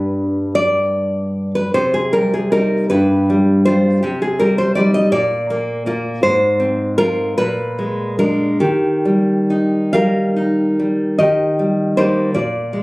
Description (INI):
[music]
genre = romantic piece for solo classical guitar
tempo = 44-55 BPM (dotted quarters)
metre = 6/8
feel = rubato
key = C minor, Eb major from 6.2 s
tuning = A4 = 439 Hz
[part]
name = nylon-string guitar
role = solo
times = 0.0-12.8 s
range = G2 to F5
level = -14 LUFS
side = equal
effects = none
[sound]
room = light reverb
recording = recorded on a phone in the room, club reverb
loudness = -14 LUFS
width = side -22 dB against mid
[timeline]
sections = 0.0-11.2 A section; 11.2-12.8 B section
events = none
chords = 0.0 G; 1.7 Cm; 2.9 G7; 4.0 Cm; 5.1 Bb; 6.2 Fm/Ab; 7.4 Bb7b9; 8.6 Eb